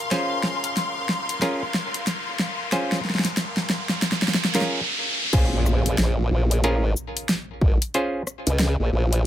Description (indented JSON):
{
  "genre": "glitch hop",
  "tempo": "92 BPM",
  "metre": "4/4",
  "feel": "swing 61% on 16ths",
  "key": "Bb minor",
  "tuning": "A4 = 440 Hz",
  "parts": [
    { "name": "riser and impact", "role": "sound effects", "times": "0.0-7.9 s", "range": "none", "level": "-29 LUFS", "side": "equal", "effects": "none" },
    { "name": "clear symphonic string section", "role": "texture", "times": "0.0-4.7 s", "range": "Bb4 to C6", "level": "-29 LUFS", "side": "left 3 dB", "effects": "sidechain pumping" },
    { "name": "clav", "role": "stabs", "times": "0.1-8.2 s", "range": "Db4 to C5", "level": "-28 LUFS", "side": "right 1 dB", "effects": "sidechain pumping, low-pass filter, digital delay" },
    { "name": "pop drum kit", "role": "drums", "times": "0.1-9.2 s", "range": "crash cymbal, hi-hat, rim click, shaker, snare drum", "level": "-24 LUFS", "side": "equal", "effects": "none" },
    { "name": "formant-sweep wobble bass", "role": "bass", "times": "5.3-9.3 s", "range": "Ab1 to Db2", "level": "-21 LUFS", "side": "equal", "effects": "chorus" },
    { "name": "electronic kick drum", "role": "drums", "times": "5.3-7.8 s", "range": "none", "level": "-20 LUFS", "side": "equal", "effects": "none" }
  ],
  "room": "light reverb",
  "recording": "none",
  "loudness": "-21 LUFS",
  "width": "side -11 dB against mid",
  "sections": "0.0-5.3 A section; 5.3-9.3 B section",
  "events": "build-up 0.0-5.3; drum fill 0.0-4.7; riser 0.0-5.3; break 4.7-5.3; drop 5.3-9.3; impact 5.3-7.9",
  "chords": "0.0 Bbm9",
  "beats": "| 0.12 0.77 1.42 2.08 | 2.73 3.38 4.03 4.68 | 5.34 5.99 6.64 7.29 | 7.95 8.60 9.25"
}